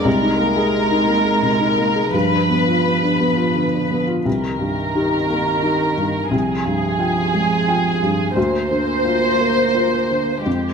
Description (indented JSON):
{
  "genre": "neoclassical piano and strings",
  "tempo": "87 BPM",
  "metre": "3/4",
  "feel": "rubato",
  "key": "C minor",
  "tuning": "A4 = 440 Hz",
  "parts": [
    { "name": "muted symphonic violin section", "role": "melody", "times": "0.0-10.7 s", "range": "G4 to C5", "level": "-20 LUFS", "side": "left 1 dB", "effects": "tape echo" },
    { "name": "felt-muted upright piano", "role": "accompaniment", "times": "0.0-10.7 s", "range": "C2 to G5", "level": "-20 LUFS", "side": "left 2 dB", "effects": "none" },
    { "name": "muted cello", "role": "second line", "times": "0.1-10.7 s", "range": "Eb3 to Bb3", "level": "-23 LUFS", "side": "right 7 dB", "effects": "none" }
  ],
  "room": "light reverb",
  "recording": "close, detailed microphones",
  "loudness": "-16 LUFS",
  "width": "side -6 dB against mid",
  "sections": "0.0-4.3 A section; 4.3-10.7 B section",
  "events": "none",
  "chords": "0.1 Abadd9/C; 2.1 G7; 4.3 Cm7; 6.3 Fmadd9/C; 8.4 Bbadd9/D"
}